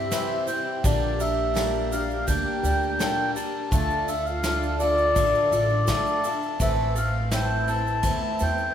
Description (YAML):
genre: acoustic folk duo or small band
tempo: 83 BPM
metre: 4/4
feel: straight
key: G dorian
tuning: A4 = 440 Hz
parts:
  - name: mellow accordion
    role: melody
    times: 0.0-8.7 s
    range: D5 to A5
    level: -25 LUFS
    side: left 1 dB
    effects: none
  - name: picked twelve-string acoustic guitar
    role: accompaniment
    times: 0.0-8.7 s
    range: A2 to C5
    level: -30 LUFS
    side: left 2 dB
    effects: none
  - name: warm studio string section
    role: sustained chords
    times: 0.0-8.7 s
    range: C3 to A4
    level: -33 LUFS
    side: right 2 dB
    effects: none
  - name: upright bass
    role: bass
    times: 0.0-8.7 s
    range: A1 to G2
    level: -28 LUFS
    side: right 1 dB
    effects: none
  - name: soft brush drum kit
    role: drums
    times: 0.1-8.6 s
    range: kick drum, ride cymbal, snare drum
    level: -30 LUFS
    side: equal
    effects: none
  - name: tube shaker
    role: percussion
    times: 0.1-8.7 s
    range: none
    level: -40 LUFS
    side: right 8 dB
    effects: none
room: moderate scoring stage reverb, RT60 2.0 s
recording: recorded in a church or concert hall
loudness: -22 LUFS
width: side -9 dB against mid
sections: 0.0-8.7 A section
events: none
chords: 0.0 C; 0.8 Gm/Bb; 3.7 Dm; 6.6 Am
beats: 0.12 | 0.84 1.56 2.28 3.00 | 3.72 4.44 5.16 5.88 | 6.60 7.32 8.04